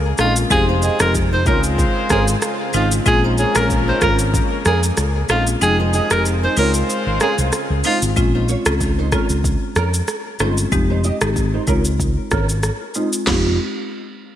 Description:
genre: afrobeats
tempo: 94 BPM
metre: 4/4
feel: swing 55% on 16ths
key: unclear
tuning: A4 = 441 Hz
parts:
  - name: warm horn section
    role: second line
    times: 0.0-7.8 s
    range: F3 to Db5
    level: -26 LUFS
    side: left 2 dB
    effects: none
  - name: lush unison pad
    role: sustained chords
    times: 0.0-8.2 s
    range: Db3 to Ab4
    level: -28 LUFS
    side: equal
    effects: chorus
  - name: fingered electric bass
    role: bass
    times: 0.0-13.6 s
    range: F1 to F2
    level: -19 LUFS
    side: equal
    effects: none
  - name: breathy alto saxophone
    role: melody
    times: 0.2-8.0 s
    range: F4 to C5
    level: -21 LUFS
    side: equal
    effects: ping-pong delay
  - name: marimba with hard mallets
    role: accompaniment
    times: 0.2-13.5 s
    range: Ab3 to G5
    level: -23 LUFS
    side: left 2 dB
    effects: low-pass filter
  - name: nylon-string guitar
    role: riff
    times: 0.2-13.6 s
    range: Db4 to Eb5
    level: -27 LUFS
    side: right 6 dB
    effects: ensemble chorus, low-pass filter, ping-pong delay
  - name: afro-pop drum kit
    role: drums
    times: 0.2-13.4 s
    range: crash cymbal, hi-hat, kick drum, rim click, shaker, snare drum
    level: -21 LUFS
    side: equal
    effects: none
room: moderate lush hall reverb, RT60 2.1 s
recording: bright 1980s-style digital production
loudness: -15 LUFS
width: side -11 dB against mid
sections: 0.0-8.2 A section; 8.2-13.3 B section; 13.3-14.4 C section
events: kick muted 5.6-8.2; filter sweep 8.2-13.3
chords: 0.0 Dbmaj7; 0.5 Fm7; 1.5 Dbmaj7; 5.6 Fm7; 6.6 Dbmaj7; 8.2 Bbm7; 10.7 Fm7; 11.7 Dbmaj7; 13.3 Fm7

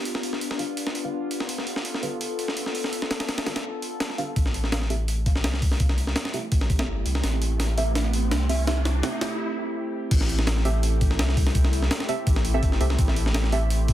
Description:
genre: drum and bass, jungle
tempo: 167 BPM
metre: 4/4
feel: straight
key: A minor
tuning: A4 = 441 Hz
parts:
  - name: warbly tape-like pad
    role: sustained chords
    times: 0.0-13.9 s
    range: A3 to A4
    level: -32 LUFS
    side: equal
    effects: chorus, built-in reverb, phaser, vintage 12-bit sampler grit
  - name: breakbeat sampler-style drum kit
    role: drums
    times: 0.1-13.9 s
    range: crash cymbal, hi-hat, kick drum, snare drum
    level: -25 LUFS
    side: equal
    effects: high-pass filter on hats, soft clipping on snare, high-pass filter on snare, high-pass filter on kick, high-pass filter on cymbals, high-pass filter on room
  - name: deep mellow chord stab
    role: stabs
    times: 0.6-13.6 s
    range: C4 to F5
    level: -32 LUFS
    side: right 3 dB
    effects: chorus, dub echo
  - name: saturated sub bass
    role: bass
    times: 4.4-13.9 s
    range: G1 to C2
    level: -24 LUFS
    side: equal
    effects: none
  - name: riser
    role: sound effects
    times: 6.4-9.4 s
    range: none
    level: -37 LUFS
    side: left 1 dB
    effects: none
room: light reverb, digital ambience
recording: dense, heavily limited modern master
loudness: -22 LUFS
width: side -13 dB against mid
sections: 0.0-4.4 A section; 4.4-10.1 B section; 10.1-13.9 C section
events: build-up 4.4-10.1; filter sweep on ambient pad 4.4-10.1; riser 6.4-9.4; drum fill 7.2-9.4; break 9.4-10.1; drop 10.1-13.9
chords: 0.0 G7; 4.4 Am7

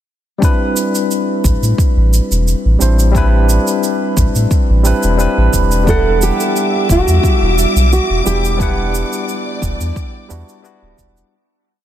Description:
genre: sunset chillout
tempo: 88 BPM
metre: 4/4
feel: straight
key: A dorian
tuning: A4 = 443 Hz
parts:
  - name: barky tine electric piano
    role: accompaniment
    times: 0.4-11.4 s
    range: G3 to F#5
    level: -18 LUFS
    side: moving between left 4 dB and right 3 dB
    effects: auto-pan, digital delay, shimmer reverb
  - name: cabasa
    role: drums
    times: 0.4-11.3 s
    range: none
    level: -24 LUFS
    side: right 4 dB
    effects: none
  - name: electronic kick drum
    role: drums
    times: 0.4-11.1 s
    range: none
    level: -16 LUFS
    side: equal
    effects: none
  - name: warm sub bass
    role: bass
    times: 1.4-11.2 s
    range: D1 to A2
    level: -13 LUFS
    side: equal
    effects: none
  - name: nylon-string guitar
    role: melody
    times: 5.9-10.6 s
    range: F#4 to A4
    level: -18 LUFS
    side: right 2 dB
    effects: digital delay, shimmer reverb
  - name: warm studio string section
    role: sustained chords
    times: 5.9-11.3 s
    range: G3 to D6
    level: -22 LUFS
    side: left 2 dB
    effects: shimmer reverb
room: light reverb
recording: dense, heavily limited modern master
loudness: -12 LUFS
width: side -11 dB against mid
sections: 0.4-11.3 groove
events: fade-out 7.7-11.3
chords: 0.4 Am11; 5.9 Em7

